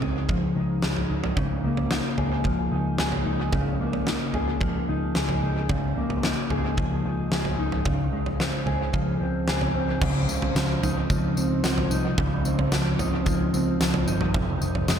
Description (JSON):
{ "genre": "dream pop", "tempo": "111 BPM", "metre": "4/4", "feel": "straight", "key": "Db major", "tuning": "A4 = 443 Hz", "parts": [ { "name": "mellow electric guitar", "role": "arpeggios", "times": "0.0-15.0 s", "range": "F2 to Ab4", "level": "-26 LUFS", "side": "left 1 dB", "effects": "analog chorus, dub echo" }, { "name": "vintage muted picked electric bass", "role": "bass", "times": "0.0-15.0 s", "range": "F1 to Db2", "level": "-28 LUFS", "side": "equal", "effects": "none" }, { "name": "huge arena drum kit", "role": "drums", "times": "0.0-15.0 s", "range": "crash cymbal, kick drum, snare drum, tambourine, toms", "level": "-27 LUFS", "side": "right 1 dB", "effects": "dub echo" } ], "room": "light reverb, studio reverb", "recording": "echo-heavy mix", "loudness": "-22 LUFS", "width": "side -8 dB against mid", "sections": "0.0-10.0 A section; 10.0-15.0 B section", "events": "none", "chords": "0.0 Fm7/Db; 1.4 Db69; 7.9 Dbmaj7; 10.0 Dbmaj9; 14.3 Fm7" }